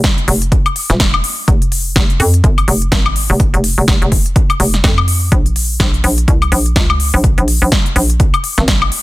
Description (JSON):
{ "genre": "bass house", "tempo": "125 BPM", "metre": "4/4", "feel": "swing 58% on 16ths", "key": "F minor", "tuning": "A4 = 443 Hz", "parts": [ { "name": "hollow knocking FM bass", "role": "bass", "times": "0.0-8.9 s", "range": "Eb1 to F2", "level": "-14 LUFS", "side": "equal", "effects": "sidechain pumping" }, { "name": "big-room dance drum kit", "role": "drums", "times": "0.0-9.0 s", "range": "hi-hat, snare drum, woodblock", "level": "-16 LUFS", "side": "left 2 dB", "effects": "overdrive" }, { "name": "electronic kick drum", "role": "drums", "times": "0.0-8.8 s", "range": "none", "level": "-13 LUFS", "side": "equal", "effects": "none" } ], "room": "digital ambience", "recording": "dense, heavily limited modern master", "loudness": "-10 LUFS", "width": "side -18 dB against mid", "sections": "0.0-9.0 A section", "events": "none", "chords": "none" }